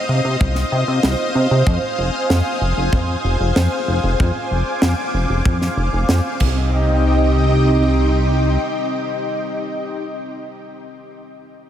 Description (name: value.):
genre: synthwave.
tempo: 95 BPM.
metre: 4/4.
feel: straight.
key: C minor.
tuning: A4 = 442 Hz.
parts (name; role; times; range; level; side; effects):
string machine, full ensemble; sustained chords; 0.0-10.0 s; C4 to Eb6; -20 LUFS; equal; phaser, ensemble chorus, sidechain pumping.
chorused synth bass; bass; 0.1-8.6 s; F1 to C3; -17 LUFS; equal; none.
kick drum; drums; 0.4-6.5 s; none; -19 LUFS; equal; none.
crisp fusion drum kit; drums; 0.6-6.5 s; crash cymbal, snare drum; -25 LUFS; right 1 dB; none.
room: moderate huge ambient reverb, RT60 7.1 s.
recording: dreamy mix soaked in reverb.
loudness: -16 LUFS.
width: side -10 dB against mid.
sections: 0.0-6.7 A section; 6.7-9.2 B section.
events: none.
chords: 0.0 Cm; 1.7 Fm7; 6.4 Cm.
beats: 0.40 1.03 | 1.67 2.30 2.93 3.56 | 4.19 4.82 5.46 6.09 | 6.72 7.35 7.98 8.61.